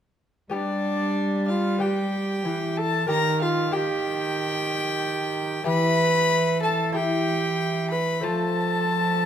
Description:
classical, renaissance-style consort dance; 93 BPM; 4/4; straight; G mixolydian; A4 = 440 Hz
warm violin; melody; 0.5-9.3 s; D5 to B5; -27 LUFS; left 6 dB
warm viola; second line; 0.5-9.3 s; D4 to B4; -26 LUFS; right 4 dB
lute; accompaniment; 0.5-9.3 s; Eb3 to G4; -30 LUFS; left 4 dB
dark cello; bass; 0.5-9.3 s; Eb3 to G3; -28 LUFS; right 1 dB
moderate stone room reverb, RT60 1.1 s; -22 LUFS; side -9 dB against mid
0.5-9.3 A section
0.5 G; 3.1 Eb; 5.7 Em; 8.2 F

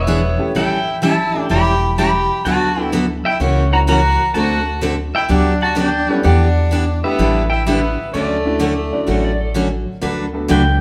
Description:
country, western swing; 127 BPM; 4/4; swing 67% on 8ths; D major; A4 = 440 Hz
pedal steel guitar; melody; 0.0-10.8 s; A4 to B5; -22 LUFS; equal
clear fiddle; second line; 0.0-9.5 s; A3 to G4; -27 LUFS; equal
upright bass; bass; 0.0-10.8 s; E1 to E2; -22 LUFS; equal
picked steel-string acoustic guitar; accompaniment; 0.1-10.6 s; C#3 to B4; -21 LUFS; equal
clear upright piano; accompaniment; 0.4-10.8 s; G3 to C#5; -27 LUFS; equal
clean lap steel guitar; second line; 8.9-9.9 s; F#4 to D5; -27 LUFS; equal
wet large studio reverb, RT60 1.4 s; band playing live in one room; -17 LUFS; mono
0.0-10.0 A section
0.0 E7; 0.5 A7; 2.4 D69; 3.4 F#7/C#; 4.3 D7; 5.3 Gmaj7/D; 6.2 Em9; 7.2 A9sus4; 8.1 Dmaj9; 10.0 D6

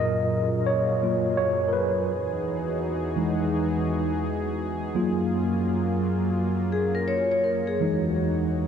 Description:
lo-fi hip hop; 84 BPM; 4/4; swing 63% on 16ths; F# major; A4 = 440 Hz
mellow tine electric piano; accompaniment; 0.0-8.7 s; A#2 to D#5; -25 LUFS; equal; medium stereo tremolo, cassette tape, low-pass filter
warm analog pad; sustained chords; 0.0-8.7 s; E2 to G#4; -28 LUFS; equal; chorus, low-pass filter
vibraphone with medium hard mallets; second line; 6.7-8.0 s; G#4 to C#5; -25 LUFS; left 2 dB; low-pass filter, diffuse ambient delay
moderate huge ambient reverb, RT60 8.2 s; dreamy mix soaked in reverb, cassette tape; -23 LUFS; side -8 dB against mid
0.0-8.7 A section
tine electric piano solo 0.0-8.7
0.0 F#maj9; 2.1 Emaj9; 4.9 F#maj9; 7.8 Emaj9

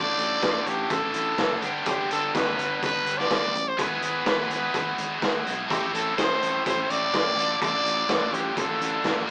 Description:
indie rock; 125 BPM; 4/4; straight; A4 = 443 Hz
growling trumpet; melody; 0.0-9.2 s; G4 to D5; -26 LUFS; equal
scooped high-gain guitar; riff; 0.0-9.3 s; G2 to A4; -28 LUFS; equal; distortion
picked electric bass; bass; 0.0-9.3 s; F#1 to B1; -38 LUFS; equal
raw garage drum kit; drums; 0.2-9.2 s; hi-hat, kick drum, snare drum; -27 LUFS; equal
moderate studio reverb, RT60 0.6 s; rough rehearsal-room recording, tube saturation, small speaker sound; -22 LUFS; side -34 dB against mid
0.0-9.3 A section
0.0 Dm/A; 1.6 G; 3.8 E/G#; 5.7 Am; 7.4 Dm/A

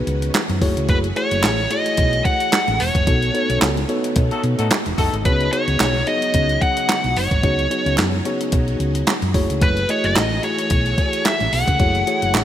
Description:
early-eighties boogie funk; 110 BPM; 4/4; swing 56% on 16ths; F# dorian; A4 = 440 Hz
mellow tine electric piano; accompaniment; 0.0-12.4 s; A3 to D#5; -25 LUFS; left 1 dB
string machine, violins; sustained chords; 0.0-12.4 s; C#3 to G#4; -29 LUFS; right 1 dB; ensemble chorus
hollow-body short-scale fingered electric bass; bass; 0.1-12.4 s; E1 to B2; -22 LUFS; equal
crisp 8-bit digital drum machine; drums; 0.1-12.4 s; hi-hat, kick drum, snare drum; -21 LUFS; equal; gated reverb
group handclap; percussion; 0.3-12.4 s; -26 LUFS; right 6 dB
nasal lead guitar with a parked wah; melody; 0.9-12.4 s; B4 to F#5; -21 LUFS; equal; overdrive
warm horn section; second line; 4.3-5.2 s; A3 to A4; -26 LUFS; left 3 dB
light reverb; bright 1980s-style digital production; -16 LUFS; side -11 dB against mid
0.0-12.4 A section
band accent 3.1-5.3
0.0 C#9sus4; 0.6 F#m9; 3.1 B9; 5.3 C#9sus4; 9.3 F#m9

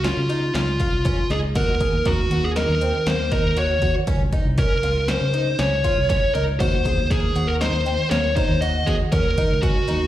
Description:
progressive instrumental, band music in an uneven meter; 119 BPM; 5/4; straight; Eb dorian; A4 = 440 Hz
high-gain lead guitar; melody; 0.0-10.1 s; F4 to Eb5; -22 LUFS; equal; distortion, slapback echo, analog delay
picked twelve-string acoustic guitar; arpeggios; 0.0-10.0 s; Bb3 to Bb4; -30 LUFS; equal; slapback echo
fingered electric bass; bass; 0.0-10.1 s; C2 to Db3; -23 LUFS; equal
punchy analog drum machine; drums; 0.0-10.0 s; hi-hat, kick drum, snare drum; -24 LUFS; equal
digital ambience; live gig heard through the venue's PA, recital hall reverb; -18 LUFS; side -13 dB against mid
0.0-10.1 A section
0.0 Db; 1.6 Ebm; 4.1 N.C.; 6.6 Ebm; 9.1 Ebm7

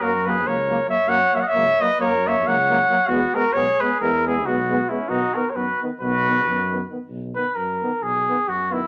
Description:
balkan folk; 270 BPM (eighths); 9/8; straight; B major; A4 = 438 Hz
mellow cornet; melody; 0.0-6.9 s; E4 to F#5; -22 LUFS; equal
clear flugelhorn; second line; 0.0-8.9 s; B3 to D#5; -27 LUFS; equal
warm euphonium; accompaniment; 0.0-8.8 s; D#3 to G#3; -35 LUFS; equal
warm trombone; accompaniment; 0.0-8.8 s; A#3 to B3; -30 LUFS; equal
mellow tuba; bass; 0.0-8.8 s; B1 to F#2; -32 LUFS; equal
moderate studio reverb, RT60 0.8 s; -21 LUFS; mono
0.0-7.1 A section; 7.1-8.9 B section
flugelhorn solo 7.1-8.9
0.0 F#; 3.1 E; 5.1 B

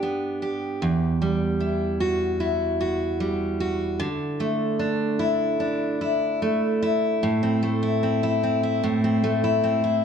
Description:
pop; 75 BPM; 4/4; straight; A4 = 440 Hz
picked steel-string acoustic guitar; solo; 0.0-10.0 s; E2 to G4; -21 LUFS; equal
wet recital hall reverb, RT60 1.4 s; dark, warm production; -21 LUFS; side -7 dB against mid
0.0-7.2 A section; 7.2-10.0 B section
0.0 G; 0.8 Emadd9; 4.0 Dsus2; 7.2 Am

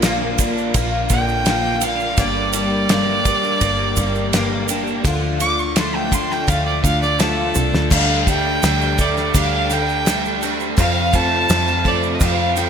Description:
folk rock and heartland rock; 84 BPM; 4/4; straight; A4 = 440 Hz
picked steel-string acoustic guitar; accompaniment; 0.0-12.7 s; F2 to A4; -24 LUFS; left 4 dB; ensemble chorus
tonewheel organ; sustained chords; 0.0-12.7 s; A3 to C5; -30 LUFS; equal; slow rotary speaker
overdriven electric guitar; riff; 0.0-12.7 s; F2 to D4; -25 LUFS; equal; analog chorus
deep dub picked electric bass; bass; 0.0-12.7 s; G1 to F2; -23 LUFS; equal
damped 70s drum kit; drums; 0.0-12.7 s; crash cymbal, kick drum, ride cymbal, snare drum, toms; -21 LUFS; equal
tube shaker; percussion; 0.0-12.7 s; -29 LUFS; right 13 dB
rich fiddle; melody; 1.1-12.7 s; A4 to D6; -21 LUFS; right 1 dB; digital delay
moderate lush hall reverb, RT60 2.0 s, small room ambience; bright 1980s-style digital production; -15 LUFS; side -7 dB against mid
0.0-7.9 A section; 7.9-12.7 B section
fiddle solo 0.0-7.9; drum fill 7.6-7.9
0.0 Bb; 2.2 Gm; 5.1 Dm; 7.9 Dsus4; 10.8 F

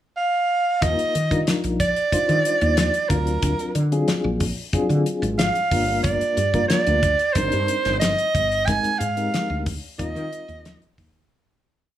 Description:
electric jazz fusion; 91 BPM; 4/4; straight; Eb major; A4 = 443 Hz
breathy soprano saxophone; melody; 0.2-10.9 s; A#4 to Ab5; -21 LUFS; right 2 dB; slapback echo
mellow reed electric piano; accompaniment; 0.8-10.8 s; F#3 to C5; -26 LUFS; left 2 dB; fast tremolo
woody fretless electric bass; bass; 0.8-11.3 s; G1 to Eb3; -24 LUFS; equal; analog chorus
damped 70s drum kit; drums; 0.8-11.1 s; hi-hat, kick drum, snare drum; -25 LUFS; left 1 dB
moderate large studio reverb, RT60 0.9 s, small room reverb; small room ambience; -19 LUFS; side -12 dB against mid
0.0-0.8 pickup bar; 0.8-11.3 A section
fade-out 8.7-11.3
0.0 N.C.; 0.8 Ebmaj9; 3.1 D7alt; 5.7 Gm7; 7.4 Cm7/G; 8.7 Abmaj7; 10.0 Eb69

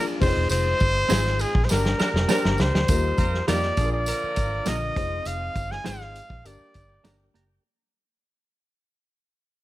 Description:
uptempo 1960s-style soul; 101 BPM; 4/4; straight; A4 = 436 Hz
clear trumpet; melody; 0.0-7.4 s; Ab4 to Ab5; -27 LUFS; equal
dark upright piano; accompaniment; 0.0-7.4 s; D3 to C5; -31 LUFS; left 5 dB
tonewheel organ; sustained chords; 0.0-7.6 s; D3 to G4; -37 LUFS; equal; slow rotary speaker
semi-hollow electric guitar; stabs; 0.0-7.4 s; G3 to C5; -32 LUFS; right 7 dB; spring reverb
vintage muted fingered electric bass; bass; 0.2-7.6 s; E1 to F2; -26 LUFS; equal
warm soul drum kit; drums; 0.2-7.5 s; hi-hat, kick drum, ride cymbal, snare drum; -25 LUFS; equal
tambourine; percussion; 0.2-7.5 s; -38 LUFS; right 3 dB
mellow horn section; second line; 1.7-4.9 s; D3 to Bb4; -33 LUFS; right 3 dB
small room ambience; -21 LUFS; side -16 dB against mid
0.0-2.9 A section; 2.9-7.7 B section
band accent 0.5-2.9; drum fill 1.7-2.9; fade-out 2.9-7.7
0.2 Fm7; 1.7 Gm; 2.9 Ebadd9; 3.8 Bb; 5.0 Fm7; 6.5 Gm

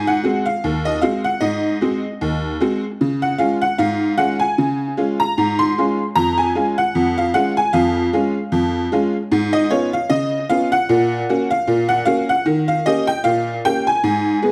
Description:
ragtime piano; 76 BPM; 2/4; swing 57% on 16ths; Db major; A4 = 440 Hz
tack piano; solo; 0.0-14.5 s; Eb2 to C6; -18 LUFS; equal
wet studio ambience, RT60 0.5 s; -18 LUFS; mono
0.0-14.5 A section
0.0 Ab7; 3.0 Db; 6.2 Db/F; 9.3 C#7/G#; 10.9 F#/A#; 12.5 D#7

